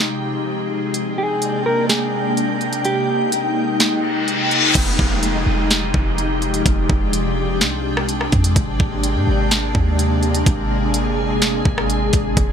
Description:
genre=hip hop, atmospheric cloud-rap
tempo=126 BPM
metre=4/4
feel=half-time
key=unclear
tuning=A4 = 439 Hz
part: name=glassy FM pad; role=sustained chords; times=0.0-12.5 s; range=C3 to G5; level=-20 LUFS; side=left 1 dB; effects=ensemble chorus, built-in reverb, sidechain pumping
part: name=trap drum kit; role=drums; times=0.9-12.5 s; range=crash cymbal, hi-hat, kick drum, rim click, snare drum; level=-19 LUFS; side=equal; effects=overdrive
part: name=mellow electric guitar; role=melody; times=1.2-3.3 s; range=G4 to Bb4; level=-24 LUFS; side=equal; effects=ping-pong delay
part: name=reverse cymbal and downlifter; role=sound effects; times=4.0-8.6 s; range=none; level=-22 LUFS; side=left 3 dB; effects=none
part: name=clean 808-style bass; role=bass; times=4.8-12.5 s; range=F1 to Ab2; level=-21 LUFS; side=equal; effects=none
room=moderate studio ambience, RT60 0.5 s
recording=none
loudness=-16 LUFS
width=side -7 dB against mid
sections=0.0-4.8 A section; 4.8-12.5 B section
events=reverse cymbal 4.0-4.8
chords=0.0 Fm9; 0.9 Abmaj9#11; 4.8 Fm9; 8.6 Abmaj9#11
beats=0.47 | 0.94 1.42 1.89 2.37 | 2.85 3.32 3.80 4.28 | 4.75 5.23 5.70 6.18 | 6.66 7.13 7.61 8.08 | 8.56 9.04 9.51 9.99 | 10.46 10.94 11.42 11.89 | 12.37

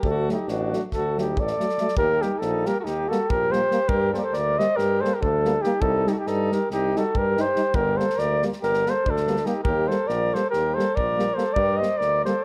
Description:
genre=balkan folk, Balkan brass band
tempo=281 BPM (eighths)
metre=9/8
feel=straight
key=unclear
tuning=A4 = 445 Hz
part: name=mellow flugelhorn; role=melody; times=0.0-12.4 s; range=F#4 to Eb5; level=-26 LUFS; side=equal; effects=none
part: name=clear alto saxophone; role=second line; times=0.0-12.4 s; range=D4 to C5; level=-33 LUFS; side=equal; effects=none
part: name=warm tuba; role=bass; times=0.0-12.2 s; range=G1 to G2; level=-31 LUFS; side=equal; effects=none
part: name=natural country drum kit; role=percussion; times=0.0-12.3 s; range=kick drum, snare drum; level=-33 LUFS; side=equal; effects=none
part: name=clear euphonium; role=accompaniment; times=0.3-12.3 s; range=A3 to Eb4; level=-34 LUFS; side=equal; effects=none
part: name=mellow euphonium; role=accompaniment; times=0.3-12.3 s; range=F#3 to G3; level=-34 LUFS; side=equal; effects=none
room=light reverb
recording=none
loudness=-23 LUFS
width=mono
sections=0.0-2.0 A section; 2.0-12.4 B section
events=none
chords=0.0 D; 2.0 Eb; 3.9 Gm; 5.8 Cm; 7.7 Gm; 9.7 Eb; 11.6 Gm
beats=| 0.03 0.25 0.46 0.68 0.89 1.11 1.32 1.54 1.75 | 1.97 2.18 2.40 2.61 2.82 3.04 3.25 3.47 3.68 | 3.90 4.11 4.32 4.54 4.75 4.97 5.18 5.39 5.61 | 5.82 6.04 6.25 6.46 6.68 6.89 7.10 7.32 7.53 | 7.74 7.95 8.17 8.38 8.59 8.80 9.02 9.23 9.44 | 9.65 9.87 10.08 10.29 10.50 10.71 10.92 11.13 11.35 | 11.56 11.77 11.98 12.19 12.40

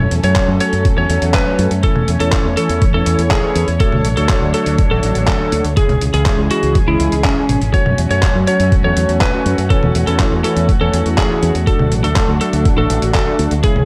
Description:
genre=italo disco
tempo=122 BPM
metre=4/4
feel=straight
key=unclear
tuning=A4 = 444 Hz
part: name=lightly driven lead guitar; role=melody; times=0.0-13.8 s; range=C#4 to C#5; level=-22 LUFS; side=equal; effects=none
part: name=dark chamber string section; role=sustained chords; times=0.0-13.8 s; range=E3 to C#5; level=-24 LUFS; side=equal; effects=vintage 12-bit sampler grit
part: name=chorused polysynth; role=stabs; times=0.0-13.8 s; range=C#3 to C#5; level=-24 LUFS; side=equal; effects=none
part: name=fingered electric bass with an envelope filter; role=bass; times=0.0-13.8 s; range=G#1 to F#2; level=-20 LUFS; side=equal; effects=none
part: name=dusty soul sampler-style drum kit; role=drums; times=0.1-13.8 s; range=handclaps, hi-hat, toms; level=-24 LUFS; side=equal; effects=overdrive, gated reverb
part: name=electronic kick drum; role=drums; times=0.4-13.7 s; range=none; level=-18 LUFS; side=equal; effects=overdrive
room=light reverb, digital ambience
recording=none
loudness=-15 LUFS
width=mono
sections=0.0-13.8 A section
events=none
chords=0.0 F#m; 1.8 A/E; 3.8 D; 5.8 C#m; 7.7 A/E; 11.7 D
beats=0.36 0.85 1.34 | 1.84 2.33 2.82 3.31 | 3.80 4.29 4.79 5.28 | 5.77 6.26 6.75 7.25 | 7.74 8.23 8.72 9.21 | 9.70 10.20 10.69 11.18 | 11.67 12.16 12.65 13.15 | 13.64

